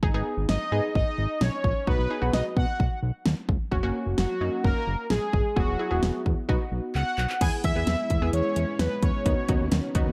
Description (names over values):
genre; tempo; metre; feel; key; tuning
synth-pop; 130 BPM; 4/4; straight; unclear; A4 = 440 Hz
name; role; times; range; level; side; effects
analog pluck; accompaniment; 0.0-10.1 s; A#3 to G#4; -34 LUFS; equal; chorus
fat analog bass; bass; 0.0-10.1 s; E1 to B2; -30 LUFS; equal; none
pop drum kit; drums; 0.0-10.1 s; crash cymbal, handclaps, hi-hat, kick drum, snare drum; -29 LUFS; equal; overdrive
analog synth brass; melody; 0.5-9.9 s; F#4 to G#5; -31 LUFS; equal; chorus, slapback echo
string machine, full ensemble; sustained chords; 7.4-10.1 s; G#3 to E4; -37 LUFS; equal; none
room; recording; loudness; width
moderate digital room reverb, RT60 1.3 s, digital ambience; dark, warm production; -26 LUFS; mono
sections
0.0-7.4 A section; 7.4-10.1 B section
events
drum fill 7.0-7.4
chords
0.0 G#m; 1.9 B; 3.7 F#add9; 5.6 Eadd9; 6.5 B; 7.4 E; 9.3 Badd9/D#